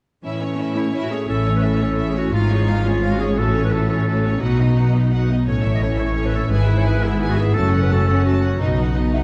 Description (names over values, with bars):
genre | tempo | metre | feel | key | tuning
cinematic | 115 BPM (dotted quarters) | 6/8 | straight | A lydian | A4 = 438 Hz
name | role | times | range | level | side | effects
clear symphonic violin section | melody | 0.2-9.2 s | A4 to A5 | -34 LUFS | equal | none
rich chamber violin section | second line | 0.2-9.2 s | B3 to E4 | -29 LUFS | equal | none
rich symphonic viola section | accompaniment | 0.2-9.2 s | G#3 to C#5 | -30 LUFS | equal | none
mellow French horn section | sustained chords | 0.2-1.1 s | E3 to C#4 | -28 LUFS | equal | none
rich symphonic cello section | bass | 0.2-9.2 s | F#2 to B2 | -24 LUFS | equal | none
clear clarinet | second line | 0.8-9.1 s | D#4 to D#5 | -28 LUFS | equal | none
concert harp | arpeggios | 1.3-9.2 s | F#2 to E5 | -28 LUFS | equal | none
rich symphonic double bass section | bass | 1.3-9.2 s | F#1 to B1 | -24 LUFS | equal | none
mellow concert flute | second line | 9.1-9.2 s | E5 | -29 LUFS | equal | none
room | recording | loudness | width
wet scoring stage reverb, RT60 1.6 s | dark, warm production | -19 LUFS | mono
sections
0.2-1.3 A section; 1.3-9.2 B section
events
none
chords
0.2 A; 2.3 C#/G#; 3.4 F#m/A; 4.4 B; 5.5 A; 6.5 E/G#; 7.6 F#m; 8.6 B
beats
| 0.24 0.77 | 1.29 1.82 | 2.34 2.85 | 3.37 3.89 | 4.42 4.94 | 5.47 6.00 | 6.52 7.04 | 7.56 8.08 | 8.61 9.13